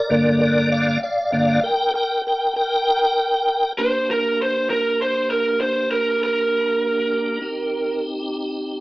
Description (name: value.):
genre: blues.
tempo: 66 BPM (dotted quarters).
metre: 12/8.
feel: straight.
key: G minor.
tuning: A4 = 439 Hz.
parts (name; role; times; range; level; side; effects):
tonewheel organ; sustained chords; 0.0-8.8 s; G2 to G5; -20 LUFS; equal; overdrive, chorus vibrato, slow rotary speaker.
lead guitar through a small cranked amp; melody; 3.8-8.0 s; Bb4 to C5; -19 LUFS; right 2 dB; overdrive.
room: moderate studio reverb, RT60 0.6 s.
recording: small speaker sound.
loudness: -18 LUFS.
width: side -19 dB against mid.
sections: 0.0-3.8 A section; 3.8-8.8 A section.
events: tonewheel organ solo 0.0-3.8; lead electric guitar solo 3.8-8.8.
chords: 0.0 Gm; 7.4 Cm.